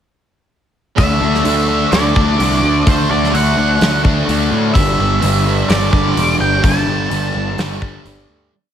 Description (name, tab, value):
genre	rock, shoegaze and dream pop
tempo	127 BPM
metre	4/4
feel	straight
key	unclear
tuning	A4 = 440 Hz
part	octave-fuzz lead guitar	melody	1.0-8.0 s	C5 to A5	-19 LUFS	equal	distortion, tape echo
part	fuzz guitar	riff	1.0-8.5 s	G2 to D4	-17 LUFS	equal	distortion, lush chorus
part	fuzz picked electric bass	bass	1.0-8.5 s	E1 to A2	-18 LUFS	equal	overdrive
part	big rock drum kit	drums	1.0-8.2 s	hi-hat, kick drum, snare drum	-18 LUFS	equal	none
room	light reverb, studio ambience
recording	none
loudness	-12 LUFS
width	side -9 dB against mid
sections	1.0-8.5 verse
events	fade-out 6.6-8.5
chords	1.0 D5; 4.8 Gsus2